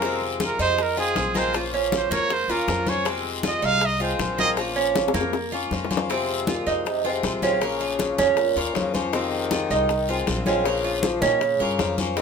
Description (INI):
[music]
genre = latin, Cuban son and guajira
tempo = 158 BPM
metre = 4/4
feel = straight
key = F minor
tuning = A4 = 440 Hz
[part]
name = warm trumpet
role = melody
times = 0.0-4.5 s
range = Ab4 to F5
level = -24 LUFS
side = right 2 dB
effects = none
[part]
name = picked swing-style acoustic guitar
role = accompaniment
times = 0.0-12.2 s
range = C3 to F4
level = -28 LUFS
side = left 5 dB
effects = none
[part]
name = Cuban tres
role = arpeggios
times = 0.0-12.2 s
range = Bb3 to C5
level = -26 LUFS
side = right 7 dB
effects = none
[part]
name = upright bass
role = bass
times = 0.0-12.2 s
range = Bb1 to Bb2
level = -32 LUFS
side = equal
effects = none
[part]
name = bongos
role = percussion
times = 0.0-12.2 s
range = none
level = -30 LUFS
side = left 5 dB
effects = none
[part]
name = congas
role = percussion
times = 0.0-12.2 s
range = none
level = -30 LUFS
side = left 3 dB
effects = none
[part]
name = guiro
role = percussion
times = 0.0-12.2 s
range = none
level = -35 LUFS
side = left 5 dB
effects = none
[part]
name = warm bassoon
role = second line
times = 6.1-12.2 s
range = Bb2 to F3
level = -27 LUFS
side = left 4 dB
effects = none
[sound]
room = moderate studio reverb, RT60 0.8 s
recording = minimal, uncompressed stereo recording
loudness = -21 LUFS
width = side -6 dB against mid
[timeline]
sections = 0.0-6.1 A section; 6.1-12.2 B section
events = trumpet solo 0.0-6.1; drum fill 5.0-6.1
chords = 0.0 Fm7; 1.5 Bbm; 3.1 Fm7; 4.6 Bbm; 6.1 Fm7; 7.6 Bbm; 9.1 Fm7; 10.7 Bbm